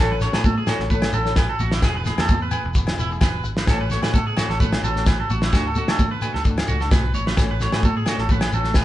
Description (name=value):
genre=highlife guitar band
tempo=130 BPM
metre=4/4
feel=swing 54% on 16ths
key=A major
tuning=A4 = 445 Hz
part: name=flamenco guitar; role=accompaniment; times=0.0-8.8 s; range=E3 to A4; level=-30 LUFS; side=left 3 dB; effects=none
part: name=electric guitar at the edge of break-up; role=arpeggios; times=0.0-8.8 s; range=E4 to C#5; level=-26 LUFS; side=right 3 dB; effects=spring reverb
part: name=vintage muted fingered electric bass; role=bass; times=0.0-8.8 s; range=E1 to D3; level=-26 LUFS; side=equal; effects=none
part: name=cloth-damped thuddy drum kit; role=drums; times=0.2-8.8 s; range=kick drum, snare drum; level=-21 LUFS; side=equal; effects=none
part: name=shekere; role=percussion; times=0.2-8.8 s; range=none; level=-30 LUFS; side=left 2 dB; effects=none
part: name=agogo bells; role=percussion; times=0.3-8.8 s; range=none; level=-31 LUFS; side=equal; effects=none
part: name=congas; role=percussion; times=0.5-8.6 s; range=none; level=-28 LUFS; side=right 2 dB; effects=none
room=moderate large studio reverb, RT60 1.0 s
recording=band playing live in one room, nothing above 10.9 kHz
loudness=-18 LUFS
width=side -14 dB against mid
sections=0.0-8.8 A section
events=drum fill 7.0-7.4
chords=0.0 A6; 1.8 E; 3.7 A6; 5.5 D; 7.4 A6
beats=0.45 0.91 1.37 | 1.83 2.30 2.76 3.22 | 3.68 4.14 4.61 5.07 | 5.53 5.99 6.45 6.91 | 7.38 7.84 8.30 8.76